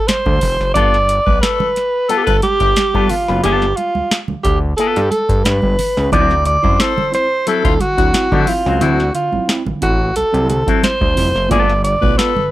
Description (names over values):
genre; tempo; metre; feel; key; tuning
funk; 89 BPM; 4/4; straight; D mixolydian; A4 = 440 Hz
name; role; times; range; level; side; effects
breathy alto saxophone; melody; 0.0-12.5 s; F4 to D5; -16 LUFS; right 1 dB; plate reverb
booming analog drum machine; drums; 0.1-12.4 s; hi-hat, kick drum, snare drum; -19 LUFS; equal; none
congas; percussion; 0.1-12.5 s; none; -26 LUFS; right 4 dB; none
fat analog bass; bass; 0.3-12.2 s; F1 to D3; -18 LUFS; equal; none
electric guitar with an envelope filter; accompaniment; 0.8-11.7 s; F#3 to B4; -20 LUFS; left 7 dB; plate reverb
raspy tenor saxophone; second line; 1.3-12.5 s; F4 to C5; -22 LUFS; left 10 dB; plate reverb
mellow tine electric piano; stabs; 6.1-12.5 s; G2 to F4; -23 LUFS; right 3 dB; medium stereo tremolo, plate reverb
room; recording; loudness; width
light reverb; none; -13 LUFS; side -15 dB against mid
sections
0.0-12.5 A section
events
none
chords
0.0 D7; 0.8 G9; 6.1 D9; 11.5 G9